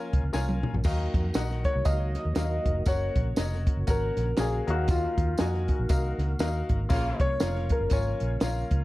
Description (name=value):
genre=uptempo 1960s-style soul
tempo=119 BPM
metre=4/4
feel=swing 59% on 8ths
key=Eb minor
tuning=A4 = 440 Hz
part: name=warm baby grand piano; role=melody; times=0.0-8.4 s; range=F4 to Eb5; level=-32 LUFS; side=left 1 dB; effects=tape echo
part: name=bright upright piano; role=accompaniment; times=0.0-8.8 s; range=Bb2 to Ab5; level=-36 LUFS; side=left 4 dB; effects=none
part: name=mellow tonewheel organ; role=sustained chords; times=0.0-8.8 s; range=Db3 to F5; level=-38 LUFS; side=equal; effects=chorus vibrato, slow rotary speaker
part: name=vintage muted fingered electric bass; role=bass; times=0.1-8.8 s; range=F1 to F2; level=-29 LUFS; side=equal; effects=none
part: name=compact cocktail drum kit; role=drums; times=0.1-8.8 s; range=crash cymbal, hi-hat, kick drum, snare drum, toms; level=-28 LUFS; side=equal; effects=none
part: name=tambourine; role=percussion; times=0.3-8.6 s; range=none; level=-45 LUFS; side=right 3 dB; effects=none
part: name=clear horn section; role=second line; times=6.9-7.3 s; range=Db3 to F4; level=-34 LUFS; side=right 1 dB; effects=none
room=light reverb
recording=dark, warm production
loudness=-24 LUFS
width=side -18 dB against mid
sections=0.8-8.8 A section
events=drum fill 0.3-0.8; grand piano solo 0.8-8.8; band accent 6.9-8.8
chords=0.0 Bbm; 0.8 Ebmadd9; 2.9 Gb; 4.6 Ebmadd9; 6.9 Bbm